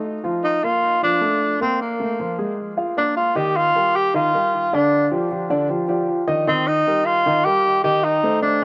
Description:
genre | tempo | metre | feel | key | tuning
jazz | 154 BPM | 4/4 | straight | Bb major, Eb major from 3.4 s | A4 = 437 Hz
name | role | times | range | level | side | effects
breathy tenor saxophone | melody | 0.0-8.6 s | Bb3 to G4 | -21 LUFS | equal | analog delay
dark grand piano | accompaniment | 0.0-8.6 s | D3 to F5 | -25 LUFS | equal | analog delay
room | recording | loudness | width
moderate spring reverb, RT60 1.0 s, small room ambience | echo-heavy mix, cassette tape | -20 LUFS | mono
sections
0.0-3.4 A section; 3.4-8.6 B section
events
none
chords
0.2 Bbmaj7; 2.6 Bb5; 3.4 Ebadd9; 4.9 G5; 6.5 Ebadd9; 8.0 Cm69/Eb

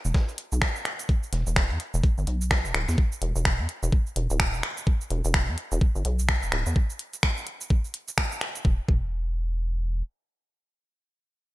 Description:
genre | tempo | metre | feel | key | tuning
minimal techno | 127 BPM | 4/4 | swing 60% on 16ths | E minor | A4 = 440 Hz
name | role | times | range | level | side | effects
minimal click drum kit | drums | 0.0-8.6 s | cabasa, finger snaps, hi-hat | -28 LUFS | equal | gated reverb
rubbery square bass | bass | 0.1-10.0 s | D1 to E2 | -26 LUFS | equal | sidechain pumping
dusty soul sampler-style drum kit | drums | 0.1-3.0 s | hi-hat, snare drum | -38 LUFS | equal | high-pass filter on hats, high-pass filter on snare, gated reverb
electronic kick drum | drums | 0.1-9.0 s | none | -23 LUFS | equal | none
room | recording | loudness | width
digital ambience | bright 1980s-style digital production | -24 LUFS | side -17 dB against mid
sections
0.0-8.6 A section; 8.6-11.5 B section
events
drop 0.0-8.6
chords
none

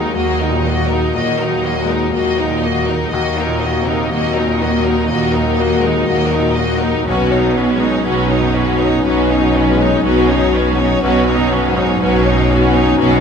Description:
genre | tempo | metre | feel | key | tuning
cinematic | 61 BPM | 4/4 | rubato | unclear | A4 = 442 Hz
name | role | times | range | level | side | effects
clear studio violin section | melody | 0.0-13.2 s | Bb4 to Eb5 | -22 LUFS | left 3 dB | none
rich studio violin section | second line | 0.0-13.2 s | Db4 to Gb4 | -23 LUFS | left 5 dB | none
bright concert grand piano | accompaniment | 0.0-13.2 s | Cb2 to Ab3 | -20 LUFS | left 3 dB | none
bright studio viola section | accompaniment | 0.0-13.2 s | Bb3 to Eb4 | -22 LUFS | right 3 dB | none
dark French horn section | sustained chords | 0.0-13.2 s | Bb3 to Gb4 | -20 LUFS | left 4 dB | none
rich studio cello section | bass | 0.0-13.2 s | Eb2 to Cb3 | -20 LUFS | right 3 dB | none
rich studio double bass section | bass | 0.0-13.2 s | Cb2 to Eb2 | -22 LUFS | right 4 dB | none
room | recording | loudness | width
moderate concert hall reverb, RT60 1.8 s | minimal, uncompressed stereo recording | -13 LUFS | side -6 dB against mid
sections
0.0-13.2 A section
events
none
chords
0.0 Ebm; 7.1 Cbadd9

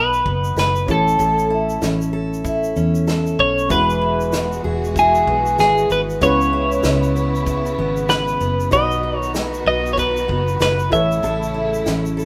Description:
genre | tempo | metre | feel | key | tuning
acoustic pop | 96 BPM | 4/4 | swing 60% on 16ths | E major | A4 = 439 Hz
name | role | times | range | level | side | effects
twelve-string electric guitar | melody | 0.0-11.8 s | G#4 to E5 | -20 LUFS | equal | none
clear upright piano | accompaniment | 0.0-12.2 s | G#3 to C#5 | -31 LUFS | equal | none
picked steel-string acoustic guitar | accompaniment | 0.0-12.2 s | A2 to B4 | -26 LUFS | equal | none
vintage muted fingered electric bass | bass | 0.0-12.2 s | E1 to E2 | -25 LUFS | equal | none
unplugged drum kit | drums | 0.1-12.2 s | kick drum, shaker, snare drum | -29 LUFS | equal | none
warm studio string section | sustained chords | 3.7-12.2 s | C#3 to F#4 | -32 LUFS | equal | none
room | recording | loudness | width
moderate stone room reverb, RT60 1.0 s | band playing live in one room | -18 LUFS | mono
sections
0.0-12.2 A section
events
none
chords
0.0 B; 0.9 A; 3.7 Eadd9; 6.2 C#m7; 8.7 B; 10.9 A

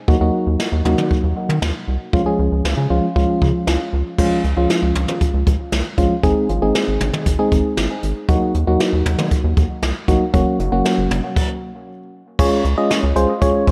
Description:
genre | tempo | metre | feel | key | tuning
synth-pop | 117 BPM | 4/4 | straight | Db major | A4 = 440 Hz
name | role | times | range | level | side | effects
FM electric piano | accompaniment | 0.1-13.7 s | F3 to Eb5 | -21 LUFS | equal | analog delay
rubbery square bass | bass | 0.1-13.7 s | Gb1 to Eb3 | -22 LUFS | equal | none
jazz brush drum kit | drums | 0.1-13.7 s | crash cymbal, hi-hat, kick drum, snare drum, toms | -22 LUFS | equal | none
room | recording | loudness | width
light reverb | echo-heavy mix | -18 LUFS | mono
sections
0.0-4.2 A section; 4.2-12.4 B section; 12.4-13.7 C section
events
stop 11.4-12.4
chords
0.1 Ebm; 2.1 Db; 6.2 Ab; 8.3 Ebm; 10.3 Gb; 12.4 Db

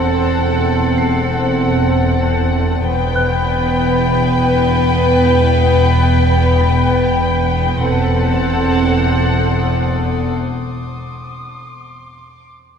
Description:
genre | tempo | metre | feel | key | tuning
cinematic | 96 BPM | 4/4 | straight | unclear | A4 = 443 Hz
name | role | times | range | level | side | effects
dark studio violin section | melody | 0.0-10.4 s | F#5 to G5 | -22 LUFS | left 4 dB | none
warm chamber violin section | second line | 0.0-10.3 s | A4 to B4 | -20 LUFS | left 2 dB | none
warm studio viola section | accompaniment | 0.0-10.4 s | B3 to C4 | -21 LUFS | right 4 dB | none
bubbling stepped-filter texture | sustained chords | 0.0-10.4 s | B4 to B5 | -24 LUFS | left 2 dB | chorus, built-in reverb
dark studio cello section | bass | 0.0-10.3 s | E2 | -20 LUFS | equal | none
rich studio double bass section | bass | 0.0-10.3 s | E1 | -18 LUFS | equal | none
music box | texture | 0.0-8.4 s | A5 to C7 | -27 LUFS | equal | none
dark chamber violin section | texture | 2.8-12.5 s | G5 to D#6 | -32 LUFS | left 4 dB | none
room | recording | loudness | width
wet church reverb, RT60 3.1 s | recorded in a church or concert hall | -12 LUFS | side -7 dB against mid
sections
0.0-12.8 A section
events
break 10.4-12.8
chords
0.0 F#dim/E; 2.9 Em; 7.9 F#dim/E

